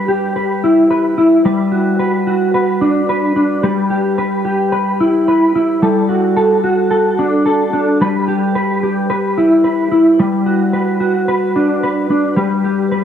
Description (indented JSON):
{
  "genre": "dream pop",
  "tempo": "110 BPM",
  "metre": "4/4",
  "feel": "straight",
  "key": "G major",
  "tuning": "A4 = 440 Hz",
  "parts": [
    { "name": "mellow electric guitar", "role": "solo", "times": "0.0-13.0 s", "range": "G3 to B4", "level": "-12 LUFS", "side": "equal", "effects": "ensemble chorus, tape echo" }
  ],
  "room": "moderate lush hall reverb, RT60 2.0 s",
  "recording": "dark, warm production",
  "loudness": "-12 LUFS",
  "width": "side -8 dB against mid",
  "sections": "0.0-13.0 A section",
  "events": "none",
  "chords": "0.0 Em/G; 1.5 Gmaj7; 3.6 Em/G; 5.8 Dadd11/G; 8.0 Em/G; 10.2 Gmaj7; 12.4 G"
}